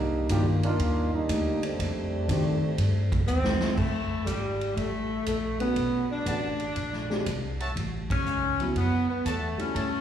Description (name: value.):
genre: jazz, big band swing.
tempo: 120 BPM.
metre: 4/4.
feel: swing 68% on 8ths.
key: unclear.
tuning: A4 = 440 Hz.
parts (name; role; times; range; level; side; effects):
warm trombone section; second line; 0.0-3.3 s; Eb3 to G4; -29 LUFS; right 2 dB; slapback echo.
upright bass; bass; 0.0-10.0 s; Ab1 to A2; -30 LUFS; equal; none.
dark baby grand piano; accompaniment; 0.3-2.6, 5.6-9.7 s; Eb3 to G4; -31 LUFS; left 2 dB; slapback echo.
swinging big-band drum kit; drums; 0.3-9.9 s; crash cymbal, hi-hat, kick drum, ride cymbal, snare drum; -33 LUFS; equal; none.
warm saxophone section; melody; 3.3-10.0 s; G3 to D4; -28 LUFS; equal; slapback echo.
clear trumpet section; stabs; 6.3-10.0 s; B4 to A5; -35 LUFS; right 1 dB; slapback echo.
room: light reverb.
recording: live gig heard through the venue's PA, recital hall reverb, small room ambience.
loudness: -25 LUFS.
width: side -9 dB against mid.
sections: 0.0-3.8 A section; 3.8-10.0 B section.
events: trombone section solo 0.0-3.8; drum fill 3.3-3.8; band accent 8.0.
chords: 0.0 Cm11; 1.8 F13; 3.8 F; 5.8 Bm7; 6.8 Bb13; 7.8 A6.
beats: 0.30 0.79 1.29 | 1.79 2.28 2.78 3.28 | 3.77 4.27 4.77 5.27 | 5.77 6.26 6.76 7.26 | 7.76 8.26 8.76 9.26 | 9.76.